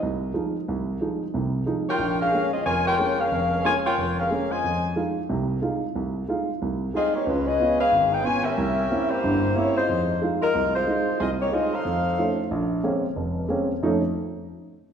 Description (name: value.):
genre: jazz.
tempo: 183 BPM.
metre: 4/4.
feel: swing 61% on 8ths.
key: F minor.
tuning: A4 = 440 Hz.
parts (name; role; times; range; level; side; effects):
mellow saxophone section; melody; 0.0-4.8, 7.0-12.4 s; Ab3 to Ab5; -23 LUFS; left 2 dB; none.
dark baby grand piano; accompaniment; 0.0-14.0 s; F1 to F4; -25 LUFS; right 2 dB; none.
room: wet recital hall reverb, RT60 1.5 s.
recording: recorded in a church or concert hall.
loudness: -22 LUFS.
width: side -8 dB against mid.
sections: 0.0-12.5 A section; 12.5-13.8 B section; 13.8-14.9 C section.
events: none.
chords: 0.0 Fm7; 2.0 Bbm7; 4.6 Fm7; 7.3 Db7; 8.6 C7b9; 9.9 Fm7; 11.8 F7b13; 12.5 Bbm9; 13.8 F7b13.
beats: 0.01 0.34 | 0.67 1.00 1.33 1.66 | 1.99 2.32 2.65 2.98 | 3.31 3.64 3.97 4.30 | 4.63 4.96 5.29 5.61 | 5.94 6.27 6.60 6.93 | 7.26 7.58 7.91 8.24 | 8.57 8.90 9.22 9.55 | 9.88 10.21 10.54 10.87 | 11.19 11.52 11.85 12.18 | 12.51 12.83 13.16 13.49 | 13.82.